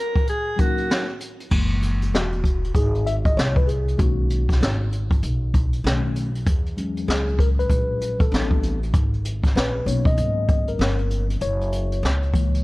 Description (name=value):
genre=hip hop, jazz-hop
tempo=97 BPM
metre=4/4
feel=swing 63% on 16ths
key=unclear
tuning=A4 = 440 Hz
part: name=breathy alto saxophone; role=melody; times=0.0-1.2 s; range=F#4 to A#4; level=-25 LUFS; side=equal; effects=none
part: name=jazz brush drum kit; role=drums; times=0.2-12.6 s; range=crash cymbal, hi-hat, kick drum, snare drum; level=-22 LUFS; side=equal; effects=none
part: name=mellow tine electric piano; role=accompaniment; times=0.6-12.6 s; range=D#3 to E5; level=-27 LUFS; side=left 3 dB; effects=slow stereo tremolo
part: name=upright bass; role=bass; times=1.5-12.6 s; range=E1 to E2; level=-23 LUFS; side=equal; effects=none
room=small room ambience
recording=lossy compression artefacts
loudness=-19 LUFS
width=side -20 dB against mid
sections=0.0-1.5 A section; 1.5-12.6 B section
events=break 0.0-1.5; tine electric piano solo 1.5-12.6; kick muted 11.4-12.0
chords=0.3 D#m7; 1.5 F#9; 4.0 Bmaj13; 5.8 B9; 6.5 E69; 8.3 Am11; 8.9 G#m11; 11.4 F#9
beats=0.28 0.90 | 1.51 2.13 2.75 3.37 | 3.99 4.61 5.22 5.84 | 6.46 7.08 7.70 8.32 | 8.94 9.55 10.17 10.79 | 11.41 12.03